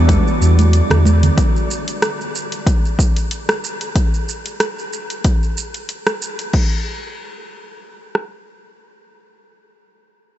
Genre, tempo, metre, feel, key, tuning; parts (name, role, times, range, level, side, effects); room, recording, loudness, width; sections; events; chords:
sunset chillout; 93 BPM; 4/4; swing 55% on 16ths; A4 = 440 Hz
airy breathy pad; sustained chords; 0.0-1.4 s; E3 to F#4; -23 LUFS; right 1 dB; chorus
round analog bass; bass; 0.0-1.3 s; E2; -12 LUFS; equal
wind-like tuned noise texture; texture; 0.0-1.4 s; D5 to D6; -29 LUFS; right 1 dB; built-in reverb, lush chorus
deep house drum kit; drums; 0.1-8.3 s; kick drum, rim click; -16 LUFS; equal; overdrive, studio reverb
deep house drum kit; drums; 0.1-6.7 s; crash cymbal, hi-hat, rim click, shaker; -23 LUFS; equal; overdrive, studio reverb
congas; percussion; 0.1-1.3 s; -23 LUFS; right 4 dB
moderate huge ambient reverb, RT60 7.2 s; dreamy mix soaked in reverb, nothing above 8.0 kHz; -15 LUFS; side -12 dB against mid
0.0-6.5 A section; 6.5-9.1 B section
0.0 Em9; 1.4 N.C.